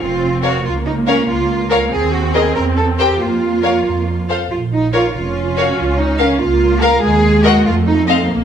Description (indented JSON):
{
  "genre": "quick classical-period movement for string orchestra",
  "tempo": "94 BPM (dotted quarters)",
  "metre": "6/8",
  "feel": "rubato",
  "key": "Bb minor",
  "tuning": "A4 = 442 Hz",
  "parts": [
    { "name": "warm symphonic viola section", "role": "accompaniment", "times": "0.0-8.4 s", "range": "Ab3 to Db4", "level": "-19 LUFS", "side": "equal", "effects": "none" },
    { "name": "rich symphonic cello section", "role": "bass", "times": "0.0-8.4 s", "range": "Bb3 to Bb4", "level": "-17 LUFS", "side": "right 2 dB", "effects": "none" },
    { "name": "warm symphonic double bass section", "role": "bass", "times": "0.0-8.4 s", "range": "F1 to F2", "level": "-19 LUFS", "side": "right 3 dB", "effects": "none" },
    { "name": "warm symphonic violin section", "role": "melody", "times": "0.4-8.2 s", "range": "Eb5 to G5", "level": "-21 LUFS", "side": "left 7 dB", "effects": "none" },
    { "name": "rich symphonic violin section", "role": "second line", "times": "0.4-8.2 s", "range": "A4 to F5", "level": "-21 LUFS", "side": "left 3 dB", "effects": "none" }
  ],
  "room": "wet recital hall reverb, RT60 1.4 s",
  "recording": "none",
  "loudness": "-13 LUFS",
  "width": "side -8 dB against mid",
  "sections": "0.0-8.4 A section",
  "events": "none",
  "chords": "0.0 N.C.; 0.6 Bbm/Db; 1.9 Ebm; 2.6 C/E; 3.2 Bb5/F; 4.5 Bbm; 5.8 Bbm/Db; 7.0 Ebm; 7.7 F7"
}